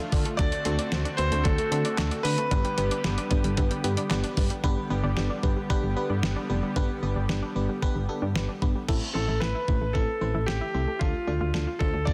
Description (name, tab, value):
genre	synth-pop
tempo	113 BPM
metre	4/4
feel	straight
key	unclear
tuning	A4 = 441 Hz
part	brassy analog pad	sustained chords	0.0-8.8 s	D3 to G4	-36 LUFS	equal	chorus
part	analog pluck	arpeggios	0.0-12.0 s	D3 to D5	-40 LUFS	equal	chorus, tape echo
part	FM electric piano	accompaniment	0.1-12.1 s	A3 to D5	-36 LUFS	equal	chorus
part	solid FM bass	bass	0.1-12.1 s	F1 to D3	-31 LUFS	equal	none
part	clean 12-bit digital drum machine	drums	0.1-12.1 s	crash cymbal, handclaps, hi-hat, kick drum, snare drum	-31 LUFS	equal	none
part	clear concert grand piano	melody	0.4-4.3, 9.1-12.1 s	F4 to D5	-32 LUFS	equal	none
room	light reverb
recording	dense, heavily limited modern master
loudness	-27 LUFS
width	mono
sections	0.0-4.6 A section; 4.6-8.9 B section; 8.9-12.1 C section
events	none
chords	0.4 D7; 2.5 G; 8.9 Am; 11.0 Dm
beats	| 0.39 0.92 1.45 1.98 | 2.51 3.04 3.58 4.11 | 4.64 5.17 5.70 6.23 | 6.76 7.29 7.82 8.35 | 8.88 9.42 9.95 10.48 | 11.01 11.54 12.07